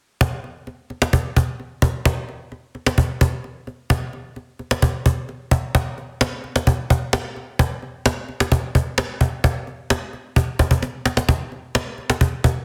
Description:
pop; 130 BPM; 4/4; straight
cajon; drums; 0.2-12.5 s; -21 LUFS; equal
moderate digital room reverb, RT60 1.0 s, studio ambience; dense, heavily limited modern master; -21 LUFS; mono
0.2-3.9 A section; 3.9-12.6 B section
drum fill 10.8-11.3
| 0.21 0.67 1.13 1.59 | 2.06 2.52 2.98 3.44 | 3.90 4.36 4.82 5.29 | 5.75 6.21 6.67 7.13 | 7.59 8.05 8.52 8.98 | 9.44 9.90 10.36 10.82 | 11.29 11.75 12.21

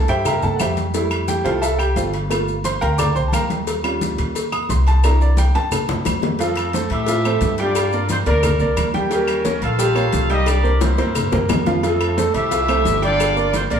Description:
latin, salsa; 176 BPM; 4/4; straight; F major; A4 = 440 Hz
bright upright piano; accompaniment; 0.0-13.8 s; F3 to Eb6; -22 LUFS; right 2 dB
upright bass; bass; 0.0-13.8 s; G1 to A2; -21 LUFS; equal
agogo bells and timbales; percussion; 0.1-13.8 s; -28 LUFS; right 2 dB
congas; percussion; 0.1-13.8 s; -28 LUFS; left 2 dB
cowbell and bongos; percussion; 0.1-13.8 s; -26 LUFS; left 4 dB
maracas; percussion; 0.1-13.8 s; -34 LUFS; left 6 dB
claves; percussion; 0.3-13.4 s; -32 LUFS; left 4 dB
mellow horn section; melody; 6.4-13.8 s; A3 to F5; -22 LUFS; equal
wet large studio reverb, RT60 0.9 s; heard from further back in the room; -16 LUFS; side -8 dB against mid
0.0-6.4 A section; 6.4-13.8 B section
upright piano solo 0.0-6.4; drum fill 5.5-6.4, 10.8-11.8
0.0 C7; 0.9 Fmaj7; 2.3 Gm7; 3.7 Eb7; 5.0 C7; 6.4 Fmaj7; 7.8 Gm7; 9.1 Eb7; 10.5 C7; 11.8 Fmaj7; 13.2 Gm7
0.26 0.60 | 0.94 1.29 1.63 1.97 | 2.31 2.65 3.00 3.34 | 3.68 4.02 4.36 4.70 | 5.04 5.38 5.72 6.06 | 6.40 6.74 7.08 7.42 | 7.76 8.10 8.44 8.77 | 9.11 9.45 9.79 10.13 | 10.47 10.81 11.15 11.49 | 11.83 12.17 12.51 12.86 | 13.20 13.54

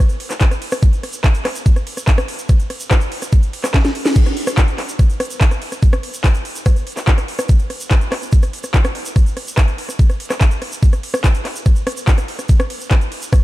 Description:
trance; 144 BPM; 4/4; straight
tube shaker; percussion; 0.0-13.4 s; -33 LUFS; right 2 dB
techno drum kit; drums; 0.1-13.4 s; crash cymbal, handclaps, hi-hat, ride cymbal, rim click, snare drum; -22 LUFS; equal; overdrive
electronic kick drum; drums; 0.4-13.4 s; -12 LUFS; equal
little or no reverb; dark, warm production; -14 LUFS; side -17 dB against mid
0.0-4.2 A section; 4.2-13.4 A section
drop 0.0-4.2, 4.2-13.4; drum fill 3.7-4.2; band accent 4.1
0.41 | 0.83 1.24 1.66 2.08 | 2.49 2.91 3.33 3.74 | 4.16 4.58 4.99 5.41 | 5.83 6.24 6.66 7.08 | 7.49 7.91 8.33 8.74 | 9.16 9.58 9.99 10.41 | 10.83 11.24 11.66 12.08 | 12.49 12.91 13.33

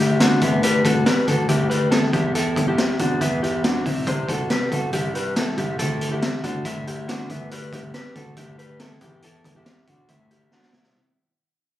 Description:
jangly indie pop; 140 BPM; 4/4; straight; G major; A4 = 438 Hz
electric guitar through a small old amp; arpeggios; 0.0-11.0 s; A3 to C5; -24 LUFS; left 1 dB
picked electric bass; bass; 0.0-10.9 s; E1 to E2; -25 LUFS; equal
raw garage drum kit; drums; 0.0-10.9 s; hi-hat, kick drum, snare drum; -23 LUFS; equal
light reverb; recorded on a phone in the room, club reverb; -19 LUFS; side -13 dB against mid
0.0-11.0 A section
fade-out 0.0-11.0; drum fill 10.5-11.0
0.4 G6/D; 2.1 Em7; 4.1 C; 5.8 Dsus2; 7.3 G6/D; 9.0 Em7; 10.1 D
0.21 | 0.64 1.06 1.49 1.92 | 2.35 2.78 3.21 3.64 | 4.07 4.50 4.93 5.36 | 5.79 6.22 6.65 7.08 | 7.51 7.94 8.37 8.80 | 9.23 9.66 10.09 10.52

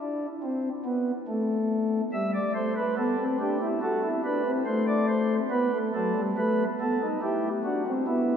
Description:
classical, baroque-style 3-part fugue for pipe organ; 71 BPM; 4/4; straight; A4 = 440 Hz
pipe organ, flutes; solo; 0.0-8.4 s; F#3 to E5; -25 LUFS; equal
wet cathedral reverb, RT60 6.6 s; heard from further back in the room; -25 LUFS; side -8 dB against mid
0.0-8.4 A section
0.0 N.C.; 2.1 Em/G; 3.8 F#m7b5; 5.5 B7; 7.2 Em
0.43 1.28 | 2.13 2.98 3.82 4.67 | 5.51 6.37 7.22 8.07

